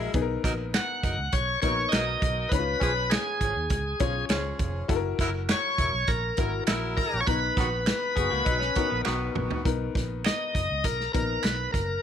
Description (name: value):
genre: uptempo 1960s-style soul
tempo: 101 BPM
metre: 4/4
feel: straight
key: B major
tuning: A4 = 440 Hz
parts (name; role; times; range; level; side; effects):
- clear saxophone section; second line; 0.0-9.6 s; D#3 to A#4; -34 LUFS; right 1 dB; slapback echo
- electric guitar through a small old amp; riff; 0.0-0.1, 8.2-9.6 s; D#3 to G#4; -34 LUFS; left 10 dB; none
- vintage muted fingered electric bass; bass; 0.0-12.0 s; E1 to D#2; -32 LUFS; right 1 dB; none
- clear upright piano; accompaniment; 0.1-11.9 s; B3 to A#5; -33 LUFS; left 9 dB; none
- natural country drum kit; drums; 0.1-11.9 s; hi-hat, kick drum, snare drum, toms; -28 LUFS; right 1 dB; none
- finger snaps; percussion; 0.7-11.6 s; none; -33 LUFS; right 13 dB; none
- bright tonewheel organ; melody; 0.8-12.0 s; G#4 to F#5; -28 LUFS; left 1 dB; overdrive, slow rotary speaker, slapback echo
room: light reverb, studio ambience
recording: 1960s-style stereo with parts hard left and right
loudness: -24 LUFS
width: side -9 dB against mid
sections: 0.0-9.7 A section; 9.7-12.0 A section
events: drum fill 9.1-9.7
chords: 0.1 Bmaj7; 2.5 C#7; 4.9 F#7; 7.3 Bmaj7